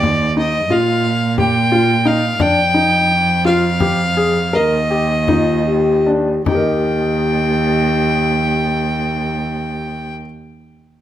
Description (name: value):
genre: contemporary instrumental, chamber music in an uneven meter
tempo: 148-179 BPM (eighths)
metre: 11/8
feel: straight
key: Eb major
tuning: A4 = 440 Hz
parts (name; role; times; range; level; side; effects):
- clear fiddle; melody; 0.0-10.1 s; D5 to G5; -18 LUFS; left 2 dB; none
- warm concert grand piano; arpeggios; 0.0-10.3 s; D4 to Eb5; -20 LUFS; left 2 dB; none
- warm cello; bass; 0.0-10.1 s; Eb2 to Bb2; -19 LUFS; right 4 dB; none
- frame drum; percussion; 0.0-6.8 s; none; -22 LUFS; left 4 dB; none
- dark French horn; second line; 5.3-10.1 s; F4 to G4; -20 LUFS; left 4 dB; none
room: moderate recital hall reverb, RT60 1.6 s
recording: minimal, uncompressed stereo recording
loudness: -13 LUFS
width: side -12 dB against mid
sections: 0.0-6.5 A section; 6.5-10.9 B section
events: slowing down 0.7-6.5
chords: 0.0 Ebmaj7(no3); 0.7 Bb5; 2.4 F7(no3); 4.5 Eb